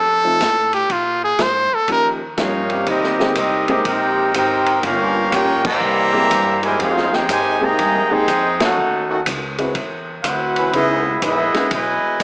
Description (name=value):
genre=jazz, big band swing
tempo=122 BPM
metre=4/4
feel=swing 66% on 8ths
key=Ab major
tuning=A4 = 440 Hz
part: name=brilliant trumpet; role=melody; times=0.0-2.1 s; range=F4 to C5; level=-15 LUFS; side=equal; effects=none
part: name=upright bass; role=bass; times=0.0-12.2 s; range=G1 to Bb2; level=-30 LUFS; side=equal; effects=none
part: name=warm baby grand piano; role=accompaniment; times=0.2-11.7 s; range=F3 to Cb5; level=-23 LUFS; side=left 1 dB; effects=none
part: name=vintage drum kit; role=drums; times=0.4-12.2 s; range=crash cymbal, hi-hat, kick drum, ride cymbal, snare drum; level=-23 LUFS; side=equal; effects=none
part: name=brilliant trumpet section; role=melody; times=2.4-12.2 s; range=Cb4 to Bb5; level=-18 LUFS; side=equal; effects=none
part: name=clear trombone section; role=second line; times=2.4-12.2 s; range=Bb2 to Ab4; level=-22 LUFS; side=equal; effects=none
part: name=clear trombone section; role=sustained chords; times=2.7-11.4 s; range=C3 to B4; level=-24 LUFS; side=equal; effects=none
room=moderate recital hall reverb, RT60 1.4 s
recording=small speaker sound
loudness=-15 LUFS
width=side -27 dB against mid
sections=0.0-2.9 A section; 2.9-12.2 B section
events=trumpet solo 0.0-2.9; band accent 5.6, 8.5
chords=0.0 F7; 0.9 Ab69; 1.9 Eb7; 2.9 Abmaj9; 4.8 Gm7b5; 5.8 C7b13; 6.8 Fm11; 8.8 Ebm7b5; 9.8 D13; 10.7 Dbm9